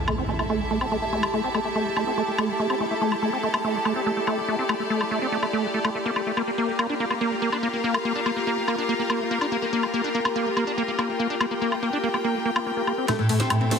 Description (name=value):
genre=psychedelic trance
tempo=143 BPM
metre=4/4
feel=straight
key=unclear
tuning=A4 = 440 Hz
part: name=evolving wavetable pad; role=sustained chords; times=0.6-13.8 s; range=G4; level=-31 LUFS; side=right 1 dB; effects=phaser, built-in reverb
part: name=impact and riser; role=sound effects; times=0.0-1.3, 13.1-13.8 s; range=none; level=-33 LUFS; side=equal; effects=none
part: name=clear studio string section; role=texture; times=0.0-13.8 s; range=E4 to Bb5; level=-29 LUFS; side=left 1 dB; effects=none
part: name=liquid acid bass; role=riff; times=0.1-13.8 s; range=G3 to D4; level=-25 LUFS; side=moving between left 3 dB and right 4 dB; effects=chorus, auto-pan, vintage 12-bit sampler grit, ping-pong delay
part: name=garage drum kit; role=drums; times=0.1-13.8 s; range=hi-hat, snare drum, woodblock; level=-30 LUFS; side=left 2 dB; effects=studio reverb
part: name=oud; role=melody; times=13.1-13.8 s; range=A2 to C4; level=-22 LUFS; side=equal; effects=phaser
part: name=round analog bass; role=bass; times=13.2-13.8 s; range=none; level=barely audible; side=none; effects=none
room=wet lush hall reverb, RT60 2.3 s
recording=heavily compressed radio sound, multiband compression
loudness=-22 LUFS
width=side -6 dB against mid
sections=0.0-13.1 A section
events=impact 0.0-1.3; filter sweep on acid bass 0.0-13.1; drum fill 13.1-13.8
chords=0.0 A5; 6.4 Bb5; 13.1 A5